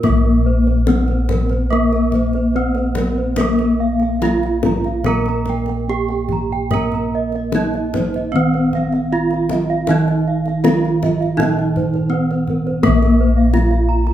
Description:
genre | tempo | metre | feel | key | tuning
Javanese gamelan | 72-85 BPM | 4/4 | straight | Bb pelog barang | A4 = 440 Hz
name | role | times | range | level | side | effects
gamelan-type bronze metallophone | melody | 0.0-14.1 s | Bb3 to Bb4 | -19 LUFS | left 1 dB | none
gamelan-type bronze metallophone | accompaniment | 0.0-14.1 s | Eb3+30c to C4-50c | -22 LUFS | right 3 dB | none
gamelan-type bronze metallophone | arpeggios | 0.0-14.1 s | Bb4 to Bb5 | -25 LUFS | right 3 dB | none
gamelan-type bossed gongs | bass | 0.0-14.1 s | Bb1 to Bb4 | -20 LUFS | equal | none
kendang | percussion | 0.0-14.1 s | none | -22 LUFS | left 3 dB | none
room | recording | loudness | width
moderate large studio reverb, RT60 1.0 s | band playing live in one room | -15 LUFS | side -11 dB against mid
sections
0.0-12.8 A section; 12.8-14.1 B section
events
none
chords
none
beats
| 0.04 0.87 1.70 2.54 | 3.37 4.20 5.04 5.87 | 6.70 7.53 8.33 9.12 | 9.89 10.65 11.39 12.12 | 12.83 13.54

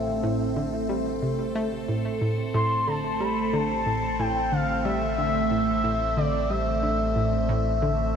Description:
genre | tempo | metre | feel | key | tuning
ambient, sequencer-driven space music | 91 BPM | 4/4 | straight | A minor | A4 = 440 Hz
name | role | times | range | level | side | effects
expressive synth lead | melody | 0.0-8.2 s | D5 to C6 | -28 LUFS | left 1 dB | lush chorus, tape echo
evolving wavetable pad | sustained chords | 0.0-8.2 s | A3 to C5 | -28 LUFS | right 2 dB | phaser, built-in reverb
analog pluck | riff | 0.0-7.9 s | A2 to A3 | -28 LUFS | equal | chorus, tape echo
warm sub bass | bass | 0.0-8.2 s | A1 | -32 LUFS | equal | none
room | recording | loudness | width
wet huge ambient reverb, RT60 7.7 s | none | -23 LUFS | side -7 dB against mid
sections
0.0-8.2 A section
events
fade-in on sub bass 0.0-8.2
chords
0.0 Am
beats
0.24 0.90 1.56 | 2.21 2.87 3.53 4.19 | 4.85 5.51 6.17 6.83 | 7.49 8.15

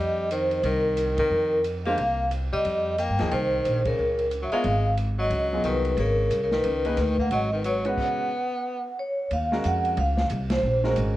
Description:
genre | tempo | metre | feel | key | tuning
modal jazz | 180 BPM | 4/4 | swing 62% on 8ths | unclear | A4 = 440 Hz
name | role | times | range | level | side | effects
vibraphone with medium mallets | melody | 0.0-10.9 s | Bb4 to G5 | -25 LUFS | equal | none
edgy tenor saxophone | second line | 0.0-8.9 s | Db3 to Cb4 | -30 LUFS | left 2 dB | none
upright bass | bass | 0.0-11.2 s | Ab1 to C3 | -27 LUFS | equal | none
open jazz drum kit | drums | 0.3-11.1 s | crash cymbal, hi-hat, kick drum, ride cymbal, snare drum | -36 LUFS | right 1 dB | none
clear upright piano | accompaniment | 1.9-11.2 s | F3 to Db5 | -31 LUFS | equal | none
room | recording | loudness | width
light reverb | worn, warbling old tape, cassette tape, warbly pitch drift | -22 LUFS | side -15 dB against mid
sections
0.0-9.3 A section; 9.3-11.2 B section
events
band accent 1.1, 3.8, 10.5; stop 8.0-9.3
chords
0.0 F9sus4; 4.0 Db9sus4; 9.3 Ebm11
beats
0.32 0.65 0.98 | 1.31 1.65 1.98 2.31 | 2.65 2.98 3.31 3.65 | 3.98 4.31 4.64 4.98 | 5.31 5.64 5.98 6.31 | 6.64 6.98 7.31 7.64 | 7.97 8.31 8.64 8.97 | 9.31 9.64 9.97 10.30 | 10.64 10.97

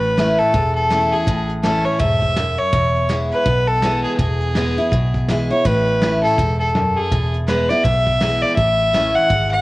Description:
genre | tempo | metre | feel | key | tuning
honky-tonk and classic country | 164 BPM | 4/4 | swing 61% on 8ths | A major | A4 = 440 Hz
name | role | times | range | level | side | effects
clear fiddle | melody | 0.0-9.6 s | G#4 to F#5 | -18 LUFS | equal | cassette tape
picked steel-string acoustic guitar | accompaniment | 0.0-9.6 s | E2 to E4 | -21 LUFS | left 1 dB | none
vintage muted fingered electric bass | bass | 0.0-9.6 s | E1 to B1 | -22 LUFS | equal | none
soft brush drum kit | drums | 0.0-9.6 s | crash cymbal, hi-hat, kick drum, snare drum | -24 LUFS | equal | none
room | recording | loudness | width
moderate spring reverb, RT60 2.5 s | home recording on cassette | -15 LUFS | side -20 dB against mid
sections
0.0-5.7 A section; 5.7-9.6 A section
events
none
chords
0.0 A; 2.7 E; 5.7 A; 7.1 E; 8.6 A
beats
0.17 0.54 0.91 | 1.27 1.64 2.00 2.37 | 2.73 3.10 3.46 3.83 | 4.20 4.56 4.92 5.29 | 5.66 6.02 6.38 6.75 | 7.11 7.48 7.84 8.21 | 8.57 8.94 9.30

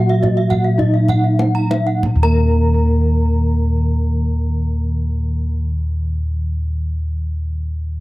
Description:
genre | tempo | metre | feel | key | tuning
Balinese gamelan | 45-56 BPM | 4/4 | straight | unclear | A4 = 439 Hz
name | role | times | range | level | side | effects
gamelan-type bronze metallophone | melody | 0.0-5.6 s | Eb4 to Bb4 | -22 LUFS | right 1 dB | tape echo
gamelan-type bronze metallophone | accompaniment | 0.0-5.6 s | Gb3 to Bb3 | -23 LUFS | right 2 dB | none
gamelan-type bronze metallophone | arpeggios | 0.0-5.6 s | Eb5 to Bb5 | -26 LUFS | left 5 dB | none
gamelan-type bossed gongs | bass | 0.0-5.5 s | Eb2 to Fb4+35c | -16 LUFS | equal | none
gamelan-type bronze metallophone | arpeggios | 0.1-5.6 s | Fb5+35c to Bb5 | -27 LUFS | right 4 dB | tape echo
kendang | percussion | 0.2-2.7 s | none | -24 LUFS | right 1 dB | none
room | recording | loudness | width
light reverb | dark, warm production | -15 LUFS | side -19 dB against mid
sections
0.0-2.0 A section; 2.0-7.3 B section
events
slowing down 0.0-2.0; drum fill 0.5-2.0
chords
none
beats
0.79 | 2.03 3.36 4.69

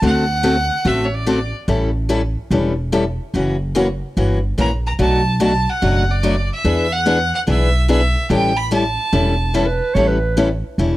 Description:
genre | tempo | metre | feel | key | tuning
acoustic string swing (jazz manouche) | 145 BPM | 4/4 | swing 62% on 8ths | A mixolydian | A4 = 442 Hz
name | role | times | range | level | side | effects
picked steel-string acoustic guitar | accompaniment | 0.0-11.0 s | B2 to A4 | -18 LUFS | left 2 dB | none
upright bass | bass | 0.0-11.0 s | E1 to E2 | -19 LUFS | equal | none
bright violin | melody | 0.1-1.5, 4.6-9.9 s | C#5 to B5 | -21 LUFS | right 2 dB | none
warm clarinet | second line | 9.5-10.5 s | A4 to C#5 | -21 LUFS | right 4 dB | none
room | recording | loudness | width
studio reverb | dry, close 1970s-style studio recording | -15 LUFS | side -16 dB against mid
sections
0.0-11.0 A section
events
none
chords
0.0 D7; 1.7 A7; 3.3 F#7; 5.0 Bm7; 6.6 E7; 8.3 A7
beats
| 0.02 0.44 0.85 1.26 | 1.68 2.09 2.51 2.92 | 3.33 3.75 4.16 4.58 | 4.99 5.40 5.82 6.23 | 6.64 7.06 7.47 7.88 | 8.30 8.71 9.12 9.54 | 9.95 10.37 10.78

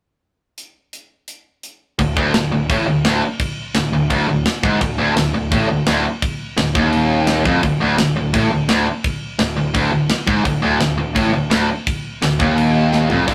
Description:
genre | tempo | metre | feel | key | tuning
heavy metal | 170 BPM | 4/4 | straight | D minor | A4 = 441 Hz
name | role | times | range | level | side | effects
tight metal drum kit | drums | 0.6-13.3 s | crash cymbal, hi-hat, kick drum, snare drum, toms | -23 LUFS | equal | none
distorted electric guitar | riff | 2.0-13.3 s | D2 to D3 | -23 LUFS | equal | distortion
distorted electric guitar | riff | 2.0-13.3 s | D2 to A2 | -27 LUFS | equal | none
tight distorted guitar | riff | 2.0-13.3 s | D2 to D3 | -21 LUFS | equal | distortion
fuzz picked electric bass | bass | 2.0-13.3 s | D1 to A1 | -29 LUFS | equal | overdrive
room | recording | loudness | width
moderate studio reverb, RT60 0.6 s | rough rehearsal-room recording, tube saturation | -17 LUFS | mono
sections
0.6-2.0 A section; 2.0-13.3 B section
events
drum fill 12.9-13.3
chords
0.6 N.C.; 2.0 D5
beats
| 0.57 0.93 1.28 1.63 | 1.99 2.34 2.69 3.04 | 3.40 3.75 4.10 4.46 | 4.81 5.16 5.52 5.87 | 6.22 6.58 6.93 7.28 | 7.63 7.99 8.34 8.69 | 9.05 9.40 9.75 10.11 | 10.46 10.81 11.16 11.52 | 11.87 12.22 12.57 12.93 | 13.28

